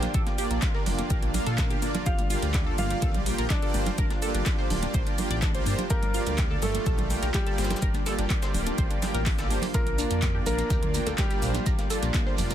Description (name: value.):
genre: progressive house.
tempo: 125 BPM.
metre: 4/4.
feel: straight.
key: G minor.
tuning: A4 = 440 Hz.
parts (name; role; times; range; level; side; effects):
bright grand piano; melody; 0.0-12.5 s; G3 to G5; -35 LUFS; equal; sidechain pumping, dub echo.
soft synth bell; second line; 0.0-12.5 s; G4 to G5; -43 LUFS; left 1 dB; none.
lush unison pad; sustained chords; 0.0-12.5 s; Bb2 to F4; -37 LUFS; equal; chorus, sidechain pumping.
tight sequenced synth; arpeggios; 0.0-12.5 s; G3 to D5; -35 LUFS; left 1 dB; chorus, cassette tape, sidechain pumping, dub echo.
soft supersaw; stabs; 0.0-12.5 s; G3 to G5; -33 LUFS; right 3 dB; sidechain pumping, dub echo.
dark detuned saw bass; bass; 0.0-12.5 s; D1 to Bb2; -30 LUFS; equal; sidechain pumping.
breakbeat sampler-style drum kit; drums; 0.0-12.5 s; hi-hat, shaker, snare drum; -40 LUFS; left 2 dB; high-pass filter on perc, high-pass filter on hats, high-pass filter on snare.
pop drum kit; drums; 0.0-12.5 s; handclaps, hi-hat; -35 LUFS; right 1 dB; overdrive.
congas; percussion; 0.0-12.5 s; none; -37 LUFS; right 3 dB; sidechain pumping on perc.
electronic kick drum; drums; 0.1-12.2 s; none; -27 LUFS; equal; overdrive.
shekere; percussion; 9.7-12.5 s; none; -40 LUFS; right 6 dB; none.
room: little or no reverb.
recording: dense, heavily limited modern master.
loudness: -24 LUFS.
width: side -11 dB against mid.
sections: 0.0-12.5 A section.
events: none.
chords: 0.0 Bb; 2.1 Gm7; 9.7 Bb.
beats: | 0.14 0.62 1.10 1.58 | 2.06 2.54 3.02 3.50 | 3.98 4.46 4.94 5.42 | 5.90 6.38 6.86 7.34 | 7.82 8.30 8.78 9.26 | 9.74 10.22 10.70 11.18 | 11.66 12.14.